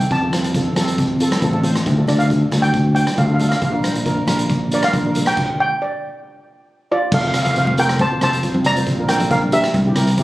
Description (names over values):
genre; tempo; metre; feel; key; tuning
calypso; 137 BPM; 4/4; straight; F major; A4 = 439 Hz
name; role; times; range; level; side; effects
steel pan; accompaniment; 0.0-10.2 s; C4 to C5; -24 LUFS; equal; none
street-band drum kit; drums; 0.0-10.2 s; crash cymbal, hi-hat, kick drum, rim click; -22 LUFS; equal; none
steel pan; melody; 0.1-10.2 s; F4 to Bb5; -19 LUFS; right 1 dB; none
modern bright fingered electric bass; bass; 0.1-10.1 s; F1 to F2; -18 LUFS; equal; none
congas; percussion; 0.3-9.8 s; none; -28 LUFS; equal; none
room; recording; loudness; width
small room ambience; recorded on a phone in the room, club ambience, compression; -15 LUFS; side -17 dB against mid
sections
0.0-7.1 A section; 7.1-10.2 B section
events
steel pan solo 0.0-7.1; stop 5.4-7.1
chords
0.1 F; 1.9 Dm; 3.6 Bb; 5.4 N.C.; 7.1 F; 8.9 Bb